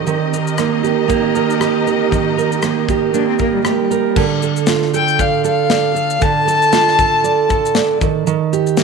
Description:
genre	acoustic pop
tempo	117 BPM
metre	4/4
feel	swing 55% on 16ths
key	unclear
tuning	A4 = 440 Hz
part	fingerpicked steel-string acoustic guitar	accompaniment	0.0-8.8 s	D3 to D5	-16 LUFS	right 10 dB	none
part	warm studio string section	sustained chords	0.0-4.1 s	Eb3 to Eb5	-22 LUFS	left 3 dB	none
part	modern studio drum kit	drums	0.1-8.8 s	crash cymbal, kick drum, rim click, shaker, snare drum	-21 LUFS	left 4 dB	none
part	warm cello	second line	3.1-4.2 s	G3 to D4	-23 LUFS	left 14 dB	none
part	warm violin	melody	4.9-7.8 s	F5 to A5	-15 LUFS	left 4 dB	tape echo
room	moderate plate reverb, RT60 1.8 s, studio reverb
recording	1960s-style stereo with parts hard left and right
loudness	-13 LUFS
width	side -4 dB against mid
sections	0.0-4.2 A section; 4.2-8.8 B section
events	none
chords	0.0 Cm7/Eb; 4.2 Dm; 8.0 Eb

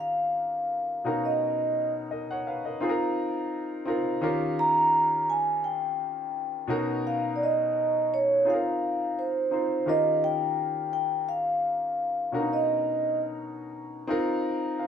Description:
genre	soul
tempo	85 BPM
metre	4/4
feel	swing 54% on 16ths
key	unclear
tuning	A4 = 440 Hz
part	vibraphone with soft mallets	melody	0.0-13.2 s	C5 to Bb5	-25 LUFS	right 1 dB	none
part	warm grand piano	accompaniment	0.0-14.9 s	B2 to F#5	-30 LUFS	left 1 dB	none
room	wet studio reverb, RT60 0.6 s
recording	band playing live in one room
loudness	-24 LUFS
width	side -8 dB against mid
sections	0.0-14.9 A section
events	none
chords	0.0 Eb7; 1.0 Bmaj9; 2.8 Bbsus24/C; 4.2 Eb7; 6.7 Bmaj9; 8.5 Cmadd11; 9.9 Eb7; 12.3 Bmaj9; 14.1 Ab69/C (rootless)

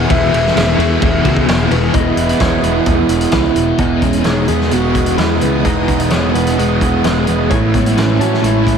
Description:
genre	rock, shoegaze and dream pop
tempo	130 BPM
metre	4/4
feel	straight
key	E major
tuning	A4 = 440 Hz
part	breathy flute-like synth lead	melody	0.0-8.8 s	A3 to F#5	-21 LUFS	equal	chorus, diffuse ambient delay
part	phased string machine	sustained chords	0.0-8.8 s	E4 to D#6	-25 LUFS	right 2 dB	ensemble chorus, phaser
part	direct-recorded clean electric guitar	arpeggios	0.0-8.7 s	F#4 to A5	-25 LUFS	left 8 dB	wide subtle chorus, diffuse ambient delay
part	overdriven electric guitar	riff	0.0-8.8 s	E2 to G#4	-18 LUFS	right 9 dB	reverse reverb
part	overdriven electric guitar	riff	0.0-8.8 s	E2 to E3	-21 LUFS	equal	tremolo
part	thick fuzz guitar	riff	0.0-8.8 s	E2 to E4	-19 LUFS	left 10 dB	distortion, wide subtle chorus
part	fuzz picked electric bass	bass	0.0-8.8 s	E1 to A2	-18 LUFS	equal	overdrive
part	loose indie drum kit	drums	0.1-8.8 s	hi-hat, kick drum, ride cymbal, snare drum	-19 LUFS	equal	none
room	moderate plate reverb, RT60 1.6 s, small room ambience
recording	dreamy mix soaked in reverb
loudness	-11 LUFS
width	side -7 dB against mid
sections	0.0-1.9 A section; 1.9-3.8 B section; 3.8-8.8 C section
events	none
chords	0.0 Emaj7; 7.5 Amaj7

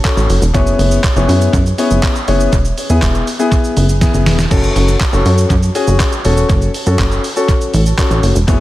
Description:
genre	dance-pop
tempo	121 BPM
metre	4/4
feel	straight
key	F# minor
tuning	A4 = 440 Hz
part	warm baby grand piano	accompaniment	0.0-8.6 s	B3 to C#5	-16 LUFS	left 3 dB	sidechain pumping, analog delay
part	detuned 8-bit digital drum machine	drums	0.0-8.6 s	crash cymbal, handclaps, hi-hat, kick drum, shaker, snare drum	-16 LUFS	equal	analog delay
part	plucky analog bass	bass	0.2-8.6 s	E1 to F#2	-13 LUFS	equal	sidechain pumping
room	light reverb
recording	echo-heavy mix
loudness	-10 LUFS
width	side -16 dB against mid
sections	0.0-4.5 A section; 4.5-8.6 A section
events	drop 0.0-4.5, 4.5-8.6; drum fill 4.0-4.5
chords	0.0 F#m; 0.5 C#m7/F#; 2.5 E; 4.5 F#m

